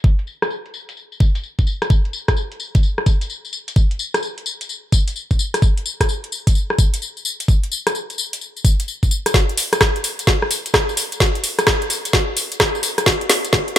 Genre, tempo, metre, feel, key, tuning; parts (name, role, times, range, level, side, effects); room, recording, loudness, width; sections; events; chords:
UK garage; 129 BPM; 4/4; swing 65% on 16ths
electronic kick drum; drums; 0.0-13.7 s; -16 LUFS; equal
garage drum kit; drums; 0.0-13.8 s; hi-hat, rim click, snare drum, tambourine; -18 LUFS; left 1 dB; low-pass filter on perc, low-pass filter on hats, low-pass filter on snare, low-pass filter on room
little or no reverb; high-pass filter; -16 LUFS; side -12 dB against mid
0.0-9.3 A section; 9.3-13.8 B section
filter sweep on drum 0.0-9.3; build-up 9.3-13.8; drum fill 9.3-13.8; filter sweep 9.3-13.8